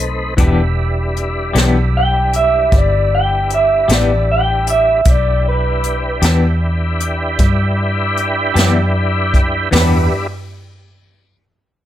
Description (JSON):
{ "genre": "slow blues", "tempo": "51 BPM (dotted quarters)", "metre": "12/8", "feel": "straight", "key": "E minor", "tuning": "A4 = 440 Hz", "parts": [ { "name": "tonewheel organ", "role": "sustained chords", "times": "0.0-10.3 s", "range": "G3 to B4", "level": "-21 LUFS", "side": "right 1 dB", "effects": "slow rotary speaker, chorus vibrato" }, { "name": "vintage muted fingered electric bass", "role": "bass", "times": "0.0-10.1 s", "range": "E1 to G2", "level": "-16 LUFS", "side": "equal", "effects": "none" }, { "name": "semi-hollow electric guitar", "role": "accompaniment", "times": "0.4-10.0 s", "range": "E3 to G4", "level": "-18 LUFS", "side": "left 4 dB", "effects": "tremolo" }, { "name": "jazz brush drum kit", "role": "drums", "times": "0.4-9.9 s", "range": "hi-hat, kick drum, snare drum, toms", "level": "-16 LUFS", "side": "equal", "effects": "none" }, { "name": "electric guitar through a small old amp", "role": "melody", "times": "2.0-10.1 s", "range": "B4 to G5", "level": "-15 LUFS", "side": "right 1 dB", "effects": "none" } ], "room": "light reverb", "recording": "none", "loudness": "-12 LUFS", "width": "side -12 dB against mid", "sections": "0.0-9.7 A section; 9.7-11.9 B section", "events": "none", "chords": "0.4 Em7", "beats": "| 0.38 1.55 2.72 3.88 | 5.05 6.22 7.39 8.56 | 9.73" }